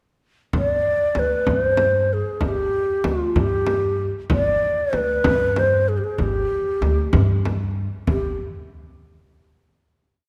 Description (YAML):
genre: Arabic maqam ensemble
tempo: 64 BPM (dotted quarters)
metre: 6/8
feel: straight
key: G maqam hijaz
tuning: A4 = 440 Hz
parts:
  - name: upright bass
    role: bass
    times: 0.5-8.4 s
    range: G1 to G2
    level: -26 LUFS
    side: equal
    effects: none
  - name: frame drum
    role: percussion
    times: 0.5-8.4 s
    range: none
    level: -27 LUFS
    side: equal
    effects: none
  - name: breathy mellow low ney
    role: melody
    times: 0.6-8.4 s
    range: F4 to D5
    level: -23 LUFS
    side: equal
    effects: none
room: moderate scoring stage reverb, RT60 2.0 s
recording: none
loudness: -21 LUFS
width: mono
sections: 0.5-8.1 A section; 8.1-9.9 final note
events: none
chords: none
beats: | 0.53 1.47 | 2.42 3.36 | 4.30 5.24 | 6.18 7.12 | 8.07